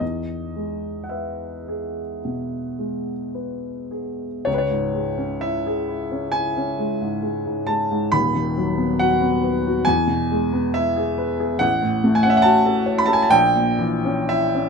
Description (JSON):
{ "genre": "classical, romantic nocturne for solo piano", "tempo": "50-72 BPM", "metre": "4/4", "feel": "rubato", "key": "E major", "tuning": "A4 = 444 Hz", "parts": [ { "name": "warm baby grand piano", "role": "solo", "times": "0.0-14.7 s", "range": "D#1 to B5", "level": "-19 LUFS", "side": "equal", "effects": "none" } ], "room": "moderate large studio reverb, RT60 0.9 s", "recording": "none", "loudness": "-19 LUFS", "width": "side -5 dB against mid", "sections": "0.0-4.5 A section; 4.5-14.7 B section", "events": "none", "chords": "0.0 E; 4.5 C#m; 8.1 B/D#; 9.9 E; 11.6 F#m/A; 13.3 A#dim7" }